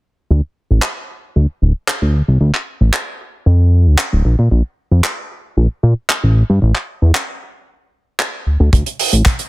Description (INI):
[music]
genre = nu-disco, nu disco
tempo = 114 BPM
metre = 4/4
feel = straight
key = D minor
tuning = A4 = 441 Hz
[part]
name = fat analog bass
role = bass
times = 0.3-9.2 s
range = D1 to Bb2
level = -10 LUFS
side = equal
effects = none
[part]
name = damped 70s drum kit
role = drums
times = 0.8-9.5 s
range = handclaps, hi-hat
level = -19 LUFS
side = right 1 dB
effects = small room ambience
[part]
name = kick drum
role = drums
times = 8.7-9.4 s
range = none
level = -12 LUFS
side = equal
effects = small room ambience
[sound]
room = little or no reverb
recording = dense, heavily limited modern master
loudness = -13 LUFS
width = side -20 dB against mid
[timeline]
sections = 0.3-9.5 A section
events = filter sweep on analog synth bass 0.3-9.5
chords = none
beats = | 0.31 0.83 1.36 1.89 | 2.41 2.94 3.46 3.99 | 4.52 5.04 5.57 6.10 | 6.62 7.15 7.67 8.20 | 8.73 9.25